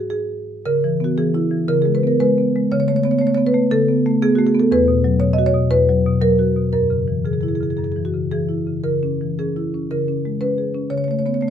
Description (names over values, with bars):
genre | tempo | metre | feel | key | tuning
classical, contemporary piece for solo marimba | 118 BPM | 4/4 | rubato | C# dorian | A4 = 443 Hz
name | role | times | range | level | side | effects
marimba with medium mallets | solo | 0.0-11.5 s | E2 to D#5 | -16 LUFS | equal | none
room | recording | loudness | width
little or no reverb | close, detailed microphones | -16 LUFS | side -9 dB against mid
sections
0.7-11.5 A section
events
none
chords
0.0 G#7; 0.7 C#m7; 1.7 G#madd11/C#; 2.7 Aadd9/C#; 4.7 Esus2; 6.7 F#9; 8.8 C#m; 9.9 A#m7/C#; 10.9 Aadd9/C#